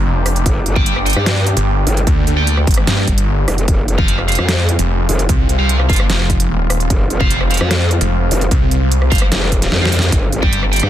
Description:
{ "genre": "heavy wobble dubstep", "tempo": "149 BPM", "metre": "4/4", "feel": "half-time", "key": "unclear", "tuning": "A4 = 441 Hz", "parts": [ { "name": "evolving wavetable pad", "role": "sustained chords", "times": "0.0-10.9 s", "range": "G3 to G4", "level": "-24 LUFS", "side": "equal", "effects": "phaser, built-in reverb, sidechain pumping" }, { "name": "snarling distorted saw bass", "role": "bass", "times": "0.0-10.8 s", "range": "Eb1 to G2", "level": "-15 LUFS", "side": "equal", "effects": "distortion, overdrive" }, { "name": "dubstep drum kit", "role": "drums", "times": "0.3-10.9 s", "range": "hi-hat, rim click, snare drum", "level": "-19 LUFS", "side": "right 1 dB", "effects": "studio reverb" }, { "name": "growl bass", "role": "bass", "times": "0.5-10.9 s", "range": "F1 to G2", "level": "-16 LUFS", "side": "equal", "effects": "chorus, overdrive" }, { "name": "electronic kick drum", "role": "drums", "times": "0.5-10.5 s", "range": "none", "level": "-16 LUFS", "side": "equal", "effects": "studio reverb" }, { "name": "heavy high-gain guitar", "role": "stabs", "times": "0.8-10.9 s", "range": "F4 to G5", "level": "-21 LUFS", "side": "right 1 dB", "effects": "distortion, digital delay" } ], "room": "little or no reverb", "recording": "dense, heavily limited modern master", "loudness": "-12 LUFS", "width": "side -12 dB against mid", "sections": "0.0-10.9 A section", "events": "drum fill 9.7-10.1", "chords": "0.0 Gm; 3.7 Fm; 10.1 Gm" }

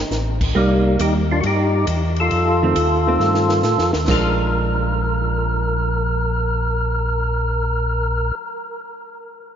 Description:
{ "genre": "soul jazz organ trio", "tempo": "136 BPM", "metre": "4/4", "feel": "swing 67% on 8ths", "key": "Bb mixolydian", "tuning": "A4 = 439 Hz", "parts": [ { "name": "mellow tonewheel organ", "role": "bass", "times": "0.0-8.3 s", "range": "A1 to A2", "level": "-21 LUFS", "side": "equal", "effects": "slow rotary speaker" }, { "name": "compact cocktail drum kit", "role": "drums", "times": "0.1-4.2 s", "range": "crash cymbal, hi-hat, kick drum, ride cymbal, snare drum", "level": "-27 LUFS", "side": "equal", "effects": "none" }, { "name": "hollow-body jazz guitar", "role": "accompaniment", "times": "0.5-8.4 s", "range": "Eb3 to Eb4", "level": "-25 LUFS", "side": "right 3 dB", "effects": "none" }, { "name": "percussive tonewheel organ", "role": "melody", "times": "0.6-8.3 s", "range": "G3 to Bb4", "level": "-20 LUFS", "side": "equal", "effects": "slow rotary speaker, overdrive" } ], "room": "wet cathedral reverb, RT60 5.9 s", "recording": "in a vast, echoing space, nothing above 7.5 kHz", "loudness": "-16 LUFS", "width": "side -8 dB against mid", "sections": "0.5-4.1 A section; 4.1-7.6 B section", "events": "drum fill 3.2-4.1", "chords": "0.0 N.C.; 0.5 Cm7; 2.3 F7; 4.1 Bb7" }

